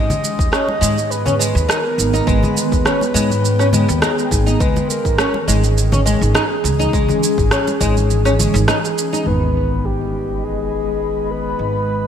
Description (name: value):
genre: organic downtempo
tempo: 103 BPM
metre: 4/4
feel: swing 53% on 16ths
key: G# harmonic minor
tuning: A4 = 441 Hz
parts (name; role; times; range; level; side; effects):
- breathy flute-like synth lead; melody; 0.0-12.1 s; G4 to D#5; -22 LUFS; left 1 dB; wide subtle chorus, digital delay
- ethereal airy pad; sustained chords; 0.0-12.1 s; D#3 to B5; -24 LUFS; right 1 dB; ensemble chorus, built-in reverb, phaser, sidechain pumping
- flamenco guitar; arpeggios; 0.0-9.2 s; G#3 to D#4; -21 LUFS; left 1 dB; analog chorus, low-pass filter, ping-pong delay
- upright bass; bass; 0.0-12.1 s; G#1 to G#2; -19 LUFS; equal; none
- electronic shaker and rim click; drums; 0.1-9.2 s; none; -22 LUFS; right 2 dB; gated reverb
- congas; percussion; 0.1-9.2 s; none; -26 LUFS; left 1 dB; none
- electronic kick drum; drums; 0.4-7.9 s; none; -20 LUFS; equal; none
- mellow tine electric piano; accompaniment; 9.2-12.1 s; D#3 to B4; -25 LUFS; left 2 dB; medium stereo tremolo, sidechain pumping
- sub drop; sound effects; 9.3-11.6 s; none; -26 LUFS; equal; none
room: moderate lush hall reverb, RT60 2.3 s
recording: bright 1980s-style digital production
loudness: -14 LUFS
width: side -8 dB against mid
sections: 0.0-9.3 A section; 9.3-12.1 B section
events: break 8.7-9.3; impact 9.3-11.6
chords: 0.0 G#m; 4.6 C#m; 9.3 G#m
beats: 0.53 1.11 1.69 | 2.27 2.85 3.44 4.02 | 4.60 5.18 5.77 6.35 | 6.93 7.51 8.10 8.68 | 9.26 9.85 10.43 11.01 | 11.59